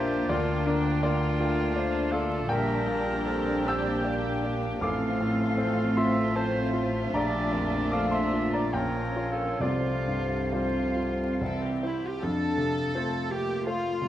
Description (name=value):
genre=classical, romantic movement for piano and orchestra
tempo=64-86 BPM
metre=3/4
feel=rubato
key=F major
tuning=A4 = 440 Hz
part: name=clear grand piano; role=melody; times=0.0-14.1 s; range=A1 to E6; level=-30 LUFS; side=left 1 dB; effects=none
part: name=warm chamber violin section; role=melody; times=0.0-14.1 s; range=F4 to F5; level=-40 LUFS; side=left 3 dB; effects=none
part: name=clear oboe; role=second line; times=0.0-11.8 s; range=D4 to G5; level=-36 LUFS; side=right 2 dB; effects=none
part: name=mellow clarinet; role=second line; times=0.0-11.9 s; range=G4 to E5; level=-36 LUFS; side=equal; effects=none
part: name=small flute group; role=second line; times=0.0-11.9 s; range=Db5 to G5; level=-39 LUFS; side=left 2 dB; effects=none
part: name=warm chamber violin section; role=second line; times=0.0-14.1 s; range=C4 to C5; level=-37 LUFS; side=right 1 dB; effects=none
part: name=dark chamber viola section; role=accompaniment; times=0.0-14.1 s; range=G3 to A4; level=-37 LUFS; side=right 2 dB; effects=none
part: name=warm bassoon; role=accompaniment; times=0.0-11.9 s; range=F3 to C4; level=-38 LUFS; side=right 3 dB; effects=none
part: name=mellow French horn section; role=sustained chords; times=0.0-14.1 s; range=E3 to D4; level=-34 LUFS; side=left 2 dB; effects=none
part: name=dark chamber cello section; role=bass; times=0.0-14.1 s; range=A2 to A4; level=-34 LUFS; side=right 2 dB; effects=none
part: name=warm chamber double bass section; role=bass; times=0.0-12.8 s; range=A1 to F2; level=-35 LUFS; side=right 1 dB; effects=none
part: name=timpani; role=percussion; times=9.6-10.9 s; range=C3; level=-39 LUFS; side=equal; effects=none
room=wet recital hall reverb, RT60 1.5 s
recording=vinyl crackle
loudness=-25 LUFS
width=side -12 dB against mid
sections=0.0-12.2 A section; 12.2-14.1 B section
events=none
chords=0.3 Bb/D; 2.5 Gm/Bb; 4.8 F/A; 7.1 Bbmaj7; 8.7 Bbm; 9.6 Csus4; 11.4 C; 12.2 F